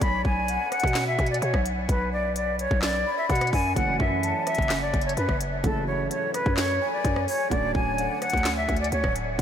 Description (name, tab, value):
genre	hip hop, trap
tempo	128 BPM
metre	4/4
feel	half-time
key	unclear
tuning	A4 = 439 Hz
part	jazz flute	melody	0.0-9.4 s	A4 to B5	-26 LUFS	equal	ping-pong delay
part	felt-muted upright piano	accompaniment	0.0, 3.8-9.4 s	C#3 to C#4	-34 LUFS	right 3 dB	ensemble chorus
part	growling 808-style bass	bass	0.0-9.4 s	D1 to B2	-28 LUFS	equal	none
part	trap drum kit	drums	0.0-9.4 s	handclaps, hi-hat, kick drum, rim click, snare drum	-28 LUFS	equal	none
part	breathy mellow jazz flute	second line	0.5-8.4 s	F#5 to B5	-36 LUFS	left 4 dB	ping-pong delay
room	moderate huge ambient reverb, RT60 8.2 s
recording	dreamy mix soaked in reverb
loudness	-22 LUFS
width	side -9 dB against mid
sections	0.0-9.4 A section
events	break 0.0-3.8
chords	0.0 B5; 3.8 F#m7; 7.5 Dmaj7